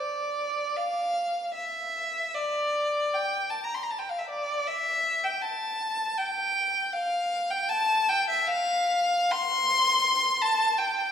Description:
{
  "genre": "classical, free, expressive piece for unaccompanied violin",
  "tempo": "67-84 BPM",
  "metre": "3/4",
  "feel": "rubato",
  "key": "D minor",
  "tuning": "A4 = 440 Hz",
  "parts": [
    { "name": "rich violin", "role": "solo", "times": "0.0-11.1 s", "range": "D5 to C6", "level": "-24 LUFS", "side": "left 1 dB", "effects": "none" }
  ],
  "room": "wet recital hall reverb, RT60 1.9 s",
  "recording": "heard from further back in the room",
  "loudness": "-24 LUFS",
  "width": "side -8 dB against mid",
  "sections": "0.0-11.1 A section",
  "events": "none",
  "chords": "none"
}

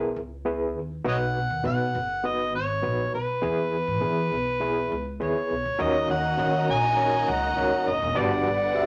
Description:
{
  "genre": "soul",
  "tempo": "101 BPM",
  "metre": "4/4",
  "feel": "straight",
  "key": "unclear",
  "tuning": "A4 = 440 Hz",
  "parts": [
    { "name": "overdriven harmonica", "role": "melody", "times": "0.0-8.9 s", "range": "B4 to G#5", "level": "-28 LUFS", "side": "equal", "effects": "none" },
    { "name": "overdriven reed electric piano", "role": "accompaniment", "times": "0.0-8.9 s", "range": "G2 to E5", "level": "-30 LUFS", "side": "equal", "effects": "fast tremolo" },
    { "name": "upright bass", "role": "bass", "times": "0.0-8.8 s", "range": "E1 to E3", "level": "-34 LUFS", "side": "equal", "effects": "none" },
    { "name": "warm studio string section", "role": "second line", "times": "5.8-8.9 s", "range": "D4 to A#5", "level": "-33 LUFS", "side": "equal", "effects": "none" },
    { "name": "tonewheel organ", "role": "sustained chords", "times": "5.8-8.9 s", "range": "D3 to C#4", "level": "-38 LUFS", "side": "equal", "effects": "none" }
  ],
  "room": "moderate studio reverb, RT60 0.5 s",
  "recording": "none",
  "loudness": "-26 LUFS",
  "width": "mono",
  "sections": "0.0-5.8 A section; 5.8-8.9 B section",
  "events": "none",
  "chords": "0.0 E; 1.1 B; 3.4 E; 5.8 D#m7; 8.2 Gmaj7"
}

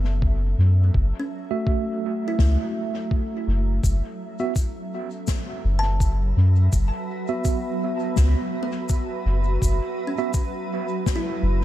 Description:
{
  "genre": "ambient dub",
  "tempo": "83 BPM",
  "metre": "4/4",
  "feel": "swing 56% on 16ths",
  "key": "F# minor",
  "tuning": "A4 = 442 Hz",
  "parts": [
    { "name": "granular cloud pad", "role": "sustained chords", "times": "0.0-11.6 s", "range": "F#3 to B5", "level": "-32 LUFS", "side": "right 1 dB", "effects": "built-in reverb" },
    { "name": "kalimba", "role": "arpeggios", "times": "0.0-11.6 s", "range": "B3 to A5", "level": "-34 LUFS", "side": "left 2 dB", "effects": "dub echo" },
    { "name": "soft dub sub bass", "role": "bass", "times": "0.0-11.6 s", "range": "F#1 to F#2", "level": "-19 LUFS", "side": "equal", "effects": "tube saturation" },
    { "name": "electronic kick drum", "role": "drums", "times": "0.2-11.2 s", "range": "none", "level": "-23 LUFS", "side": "equal", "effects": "studio reverb" },
    { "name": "mellow tine electric piano", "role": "stabs", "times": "1.5-10.3 s", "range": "A3 to E5", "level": "-29 LUFS", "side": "right 4 dB", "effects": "medium stereo tremolo, dub echo" },
    { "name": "snare drum and shaker", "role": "drums", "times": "2.4-11.2 s", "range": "none", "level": "-34 LUFS", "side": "left 5 dB", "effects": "studio reverb, dub echo" }
  ],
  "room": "small room ambience",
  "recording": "dark, warm production",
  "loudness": "-21 LUFS",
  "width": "side -13 dB against mid",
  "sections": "0.0-11.6 A section",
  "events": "fade-in on ambient pad 0.0-11.6",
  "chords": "0.0 F#m7"
}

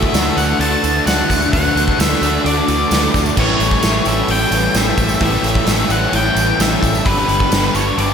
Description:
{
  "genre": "rock, shoegaze and dream pop",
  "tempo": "130 BPM",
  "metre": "4/4",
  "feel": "straight",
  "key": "A mixolydian",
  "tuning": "A4 = 440 Hz",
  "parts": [
    { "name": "octave-fuzz lead guitar", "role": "melody", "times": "0.0-8.1 s", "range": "B4 to A5", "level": "-19 LUFS", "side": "left 1 dB", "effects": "distortion, ping-pong delay" },
    { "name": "electric guitar through a small old amp", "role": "arpeggios", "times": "0.0-8.1 s", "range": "E3 to D4", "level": "-26 LUFS", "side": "equal", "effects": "none" },
    { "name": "overdriven electric guitar", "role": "riff", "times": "0.0-8.1 s", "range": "G2 to D4", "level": "-23 LUFS", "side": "equal", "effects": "analog chorus" },
    { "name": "overdriven semi-hollow guitar", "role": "riff", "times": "0.0-8.1 s", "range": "G2 to G4", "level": "-21 LUFS", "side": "left 6 dB", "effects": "lush chorus" },
    { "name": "raw garage guitar", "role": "riff", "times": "0.0-8.1 s", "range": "G2 to F#4", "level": "-22 LUFS", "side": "right 6 dB", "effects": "overdrive, reverse reverb" },
    { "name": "vintage muted fingered electric bass", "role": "bass", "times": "0.0-8.1 s", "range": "G1 to D2", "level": "-21 LUFS", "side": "equal", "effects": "none" },
    { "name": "gated 80s drum kit", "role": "drums", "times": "0.0-8.1 s", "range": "crash cymbal, hi-hat, kick drum, snare drum", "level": "-19 LUFS", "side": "equal", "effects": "none" },
    { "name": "tambourine", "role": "percussion", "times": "0.1-7.9 s", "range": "none", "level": "-31 LUFS", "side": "right 7 dB", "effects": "none" }
  ],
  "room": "wet lush hall reverb, RT60 1.7 s, small room reverb",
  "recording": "dreamy mix soaked in reverb",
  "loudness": "-13 LUFS",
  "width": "side -7 dB against mid",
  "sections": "0.0-8.1 A section",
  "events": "none",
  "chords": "0.0 Dadd9; 3.4 A7; 7.1 G"
}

